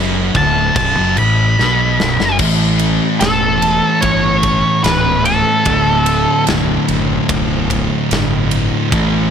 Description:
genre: stoner and doom metal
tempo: 74 BPM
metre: 4/4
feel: straight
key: unclear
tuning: A4 = 436 Hz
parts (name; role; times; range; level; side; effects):
- octave-fuzz lead guitar; melody; 0.0-6.4 s; A4 to B5; -16 LUFS; equal; wah, distortion, tape echo
- thick fuzz guitar; riff; 0.0-9.3 s; B1 to A3; -18 LUFS; left 10 dB; distortion
- thick fuzz guitar; riff; 0.0-9.3 s; B1 to A3; -18 LUFS; right 8 dB; distortion
- fuzz fingered electric bass; bass; 0.0-9.3 s; B0 to B1; -21 LUFS; equal; overdrive
- big rock drum kit; drums; 0.3-9.1 s; crash cymbal, kick drum, ride cymbal, snare drum; -20 LUFS; equal; none
room: little or no reverb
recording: none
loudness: -12 LUFS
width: side -8 dB against mid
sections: 0.0-2.4 A section; 2.4-9.3 B section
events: lead electric guitar solo 0.0-2.4; drum fill 1.6-2.4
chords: 0.0 Bm; 2.4 A; 5.7 D5

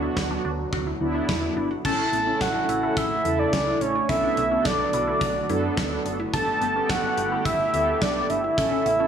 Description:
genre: synth-pop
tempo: 107 BPM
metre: 4/4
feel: straight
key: unclear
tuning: A4 = 439 Hz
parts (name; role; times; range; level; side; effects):
- mellow synth brass; accompaniment; 0.0-9.1 s; C#3 to A4; -28 LUFS; equal; chorus
- lush unison pad; sustained chords; 0.0-9.1 s; B2 to A4; -32 LUFS; right 1 dB; chorus, phaser
- resonant blip pluck; arpeggios; 0.0-9.1 s; B3 to F#4; -33 LUFS; left 2 dB; phaser, analog delay
- solid FM bass; bass; 0.0-9.1 s; F#1 to F#2; -33 LUFS; equal; none
- gated 80s drum kit; drums; 0.2-9.0 s; crash cymbal, hi-hat, kick drum, snare drum; -28 LUFS; equal; none
- fat analog lead; melody; 1.9-9.1 s; C#5 to A5; -24 LUFS; right 1 dB; none
room: light reverb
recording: small room ambience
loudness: -21 LUFS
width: side -8 dB against mid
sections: 0.0-1.9 A section; 1.9-9.1 B section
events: none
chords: 0.0 Bm/D; 1.9 A; 4.1 Bm7; 6.3 Gadd9

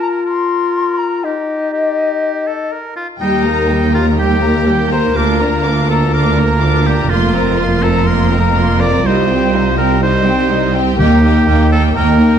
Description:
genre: cinematic, heroic adventure film score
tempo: 123 BPM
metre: 4/4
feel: straight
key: Eb major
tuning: A4 = 438 Hz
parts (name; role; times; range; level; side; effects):
- clear clarinet; second line; 0.0-3.0 s; Eb4 to F4; -20 LUFS; left 4 dB; none
- clear oboe; second line; 0.0-12.4 s; Eb4 to D5; -20 LUFS; right 1 dB; none
- silver concert flute; second line; 0.0-2.7 s; Eb5 to C6; -18 LUFS; left 5 dB; none
- warm symphonic violin section; melody; 3.2-12.4 s; Eb5 to D6; -22 LUFS; left 6 dB; none
- rich symphonic violin section; second line; 3.2-12.4 s; D4 to Bb4; -23 LUFS; left 5 dB; none
- rich symphonic viola section; accompaniment; 3.2-12.4 s; G3 to D4; -19 LUFS; right 2 dB; none
- dark French horn section; sustained chords; 3.2-12.4 s; G3 to G4; -20 LUFS; left 4 dB; none
- clear symphonic double bass section; bass; 3.2-12.4 s; F1 to Eb2; -18 LUFS; right 3 dB; none
- rich symphonic cello section; bass; 3.2-12.4 s; C2 to F2; -16 LUFS; right 2 dB; none
- timpani; percussion; 11.0-11.7 s; Eb3; -20 LUFS; equal; none
room: wet recital hall reverb, RT60 1.5 s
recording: dark, warm production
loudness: -11 LUFS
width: side -8 dB against mid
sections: 0.0-3.2 A section; 3.2-12.4 A section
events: none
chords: 0.0 Fsus4; 1.2 Eb; 5.2 Bb/D; 7.1 Fsus4; 9.1 Cm; 11.0 Eb

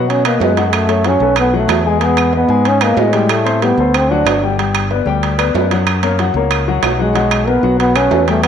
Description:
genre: Afro-Cuban jazz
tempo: 187 BPM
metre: 4/4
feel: straight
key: unclear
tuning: A4 = 440 Hz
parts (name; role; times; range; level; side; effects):
- breathy trombone; melody; 0.0-4.4, 7.0-8.5 s; G#3 to D4; -14 LUFS; right 1 dB; none
- warm grand piano; accompaniment; 0.0-8.5 s; F#3 to G#5; -18 LUFS; left 8 dB; none
- modern bright fingered electric bass; bass; 0.0-8.5 s; G1 to B2; -18 LUFS; equal; none
- timbales; percussion; 0.1-8.5 s; none; -19 LUFS; right 10 dB; none
- claves; percussion; 0.3-8.5 s; none; -25 LUFS; right 9 dB; none
room: moderate echo chamber reverb, RT60 1.4 s, small room ambience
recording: 1960s-style stereo with parts hard left and right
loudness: -11 LUFS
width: side -8 dB against mid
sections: 0.0-8.5 A section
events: none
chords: 0.0 B; 0.7 F#m; 1.4 B5; 2.0 Emaj7; 3.3 Am9; 3.9 D7; 4.6 Gmaj7; 5.9 F#; 7.1 B5

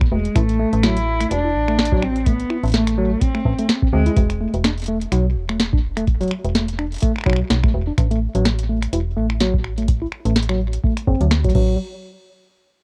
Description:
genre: IDM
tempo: 126 BPM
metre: 4/4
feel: swing 56% on 16ths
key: A melodic minor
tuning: A4 = 442 Hz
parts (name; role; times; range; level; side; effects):
- metallic FM bass; bass; 0.0-11.8 s; E1 to D2; -24 LUFS; equal; none
- booming analog drum machine; drums; 0.0-11.7 s; crash cymbal, finger snaps, hi-hat, snare drum; -25 LUFS; equal; cassette tape, tape echo
- electronic kick drum; drums; 0.0-11.7 s; none; -21 LUFS; equal; cassette tape
- rich cello; melody; 0.1-4.2 s; G#3 to E4; -24 LUFS; equal; cassette tape, tape echo
- tine electric piano; arpeggios; 0.1-11.8 s; F#3 to E4; -26 LUFS; equal; vintage 12-bit sampler grit, low-pass filter, cassette tape, tape echo
room: little or no reverb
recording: home recording on cassette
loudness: -19 LUFS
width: mono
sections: 0.0-11.8 A section; 11.8-12.8 B section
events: filter sweep on FM bass 0.0-11.8; filter sweep on tine electric piano 0.0-11.8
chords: 0.4 N.C.; 4.2 Esus4; 8.0 A5; 11.5 F#m/A; 11.8 N.C.

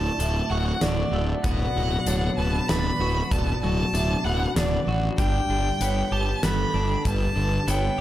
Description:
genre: post-rock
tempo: 96 BPM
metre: 3/4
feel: straight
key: D major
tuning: A4 = 440 Hz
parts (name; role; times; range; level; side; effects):
- clear violin; melody; 0.0-8.0 s; D5 to B5; -28 LUFS; equal; analog delay
- pedal steel guitar; sustained chords; 0.0-8.0 s; A3 to G4; -38 LUFS; left 4 dB; none
- twelve-string electric guitar; arpeggios; 0.0-8.0 s; D2 to B4; -29 LUFS; left 2 dB; phaser, analog delay
- vibraphone with hard mallets; arpeggios; 0.0-8.0 s; A4 to F#5; -34 LUFS; right 6 dB; analog delay
- fuzz fingered electric bass; bass; 0.0-8.0 s; D1 to A1; -25 LUFS; equal; overdrive
- huge arena drum kit; drums; 0.2-7.8 s; hi-hat, kick drum, snare drum; -29 LUFS; equal; none
room: light reverb, studio reverb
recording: none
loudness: -22 LUFS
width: side -13 dB against mid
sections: 0.0-8.0 A section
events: none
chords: 0.0 D; 5.2 G

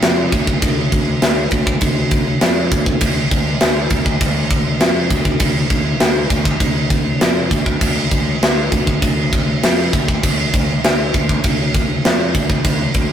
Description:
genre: heavy metal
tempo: 100 BPM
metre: 4/4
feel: straight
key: D minor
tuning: A4 = 443 Hz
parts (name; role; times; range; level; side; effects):
- sustaining fretless electric bass; bass; 0.0-13.1 s; D2 to F2; -19 LUFS; equal; none
- tight metal drum kit; drums; 0.0-13.1 s; crash cymbal, kick drum, snare drum; -15 LUFS; equal; none
room: light reverb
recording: rough rehearsal-room recording, warm saturation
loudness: -14 LUFS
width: side -9 dB against mid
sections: 0.0-13.1 A section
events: none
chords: none

